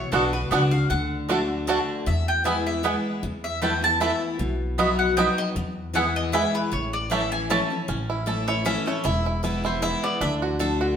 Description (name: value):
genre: bluegrass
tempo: 155 BPM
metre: 3/4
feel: swing 54% on 8ths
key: A major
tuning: A4 = 441 Hz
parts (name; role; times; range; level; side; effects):
- mandolin; melody; 0.0-10.3 s; A4 to A5; -27 LUFS; equal; none
- picked steel-string acoustic guitar; accompaniment; 0.0-11.0 s; E2 to F#4; -27 LUFS; left 2 dB; none
- upright bass; bass; 0.0-11.0 s; E1 to E2; -28 LUFS; equal; none
- bluegrass banjo; arpeggios; 0.1-11.0 s; A3 to A4; -28 LUFS; right 3 dB; none
- mandolin; stabs; 0.1-7.6 s; A3 to B5; -28 LUFS; right 3 dB; none
room: wet stone room reverb, RT60 1.3 s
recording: band playing live in one room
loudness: -22 LUFS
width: side -8 dB against mid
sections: 0.0-7.9 A section; 7.9-11.0 B section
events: mandolin solo 7.9-11.0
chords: 0.0 Bm; 0.9 D; 2.1 E; 3.2 Esus4; 4.4 B; 5.6 E; 6.7 A; 9.1 E; 10.2 D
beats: 0.13 0.52 | 0.91 1.30 1.69 | 2.07 2.46 2.85 | 3.24 3.62 4.01 | 4.40 4.79 5.17 | 5.56 5.95 6.34 | 6.72 7.11 7.50 | 7.89 8.28 8.66 | 9.05 9.44 9.83 | 10.21 10.60